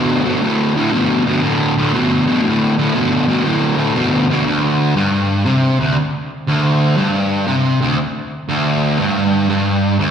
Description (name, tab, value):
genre	rock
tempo	119 BPM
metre	4/4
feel	swing 67% on 8ths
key	unclear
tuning	A4 = 442 Hz
part	fuzz guitar	solo	0.0-10.1 s	D2 to C3	-14 LUFS	equal	distortion, analog delay
room	moderate club reverb, RT60 0.6 s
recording	live gig heard through the venue's PA, recital hall reverb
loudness	-14 LUFS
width	side -8 dB against mid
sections	0.0-4.4 A section; 4.4-10.1 B section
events	none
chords	0.0 D5; 4.4 D7sus4